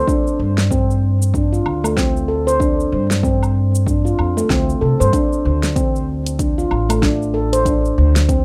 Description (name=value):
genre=organic downtempo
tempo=95 BPM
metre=4/4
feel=swing 59% on 16ths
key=unclear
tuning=A4 = 441 Hz
part: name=handpan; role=arpeggios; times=0.0-8.4 s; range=A3 to C5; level=-21 LUFS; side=equal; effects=tape echo, plate reverb
part: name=deep house drum kit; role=drums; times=0.1-8.4 s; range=cabasa, hi-hat, snare drum, woodblock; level=-26 LUFS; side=equal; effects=studio reverb
part: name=electronic kick drum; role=drums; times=0.1-8.4 s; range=none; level=-24 LUFS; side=equal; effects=studio reverb
part: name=upright bass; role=bass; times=0.4-8.4 s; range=A1 to C3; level=-20 LUFS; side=equal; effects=sidechain pumping
room=moderate studio ambience, RT60 0.5 s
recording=rough home demo mix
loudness=-17 LUFS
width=mono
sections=0.0-8.4 A section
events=none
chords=0.1 G5; 5.1 D5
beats=| 0.08 0.71 1.34 1.98 | 2.61 3.24 3.87 4.50 | 5.13 5.76 6.40 7.03 | 7.66 8.29